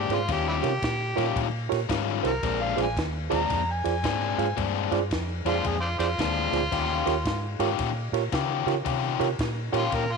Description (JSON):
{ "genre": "electric blues shuffle", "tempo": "112 BPM", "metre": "4/4", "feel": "swing 65% on 8ths", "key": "unclear", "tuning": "A4 = 437 Hz", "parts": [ { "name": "overdriven harmonica", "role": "melody", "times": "0.0-10.2 s", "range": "C4 to Bb5", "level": "-30 LUFS", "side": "equal", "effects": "none" }, { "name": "biting overdriven guitar", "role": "riff", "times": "0.0-10.0 s", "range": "Bb2 to G4", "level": "-29 LUFS", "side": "left 13 dB", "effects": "none" }, { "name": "vintage muted fingered electric bass", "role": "bass", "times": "0.0-10.2 s", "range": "Bb1 to Db3", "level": "-31 LUFS", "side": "equal", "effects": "none" }, { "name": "overdriven reed electric piano", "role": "accompaniment", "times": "0.1-9.8 s", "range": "F4 to F5", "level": "-30 LUFS", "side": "right 12 dB", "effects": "none" }, { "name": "compact cocktail drum kit", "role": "drums", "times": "0.1-10.1 s", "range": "kick drum, ride cymbal, snare drum", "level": "-33 LUFS", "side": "equal", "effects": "none" } ], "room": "light reverb, studio ambience", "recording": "1960s-style stereo with parts hard left and right", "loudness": "-24 LUFS", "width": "side -4 dB against mid", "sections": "0.0-10.2 A section", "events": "harmonica solo 0.0-10.2", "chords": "0.3 Eb9; 2.4 Bb9; 6.7 Eb9" }